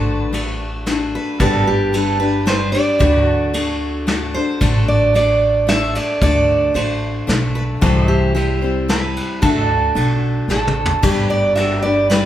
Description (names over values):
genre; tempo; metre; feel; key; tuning
honky-tonk and classic country; 112 BPM; 3/4; straight; D mixolydian; A4 = 440 Hz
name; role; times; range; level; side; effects
picked steel-string acoustic guitar; melody; 0.0-12.3 s; G4 to E5; -19 LUFS; right 3 dB; none
picked steel-string acoustic guitar; accompaniment; 0.0-12.3 s; C3 to C5; -20 LUFS; left 3 dB; none
pedal steel guitar; sustained chords; 0.0-12.3 s; C4 to E5; -29 LUFS; right 2 dB; none
upright bass; bass; 0.0-12.3 s; G1 to D2; -21 LUFS; equal; none
soft brush drum kit; drums; 0.3-12.2 s; crash cymbal, kick drum, ride cymbal, snare drum, toms; -21 LUFS; equal; none
room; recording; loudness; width
moderate large studio reverb, RT60 1.5 s; band playing live in one room; -14 LUFS; side -12 dB against mid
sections
0.0-11.0 A section; 11.0-12.3 B section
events
drum fill 10.5-11.0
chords
0.0 D; 1.4 G; 3.0 D; 7.8 C; 9.4 D; 11.0 G